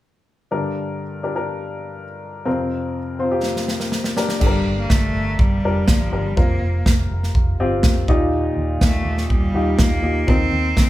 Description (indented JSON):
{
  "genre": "piano-driven pop",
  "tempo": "123 BPM",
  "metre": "4/4",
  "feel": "straight",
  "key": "G minor",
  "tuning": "A4 = 440 Hz",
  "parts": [
    { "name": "warm upright piano", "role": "accompaniment", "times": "0.5-10.9 s", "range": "F2 to C5", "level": "-23 LUFS", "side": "left 2 dB", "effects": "none" },
    { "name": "natural country drum kit", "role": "drums", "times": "3.4-10.9 s", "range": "crash cymbal, kick drum, snare drum", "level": "-18 LUFS", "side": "equal", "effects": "none" },
    { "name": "bright cello", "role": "melody", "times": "4.4-10.9 s", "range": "F3 to C4", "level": "-24 LUFS", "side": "equal", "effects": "ping-pong delay" },
    { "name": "vintage muted fingered electric bass", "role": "bass", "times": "4.4-10.9 s", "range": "F1 to Eb2", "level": "-23 LUFS", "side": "equal", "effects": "none" }
  ],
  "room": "light reverb",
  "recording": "band playing live in one room",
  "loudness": "-17 LUFS",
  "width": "side -15 dB against mid",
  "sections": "0.5-4.4 A section; 4.4-10.9 B section",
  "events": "drum fill 3.4-4.4",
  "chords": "0.5 Gm; 2.5 Fsus4; 4.2 Gm; 6.4 Fsus4; 8.1 Ebadd9; 10.3 Cm7/Eb"
}